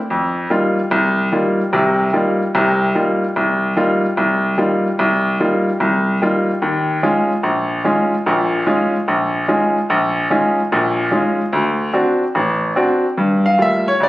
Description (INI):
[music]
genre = jazz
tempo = 147 BPM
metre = 4/4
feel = swing 66% on 8ths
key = F minor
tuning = A4 = 440 Hz
[part]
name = bright upright piano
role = solo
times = 0.1-14.1 s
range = A1 to F5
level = -14 LUFS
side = equal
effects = none
[sound]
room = moderate large studio reverb, RT60 0.8 s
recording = recorded on a phone in the room, studio reverb, compression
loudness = -14 LUFS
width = side -17 dB against mid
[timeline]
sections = 0.1-13.2 A section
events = none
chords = 0.1 F9sus4; 6.6 Eb9sus4; 11.5 D7; 13.2 Gm9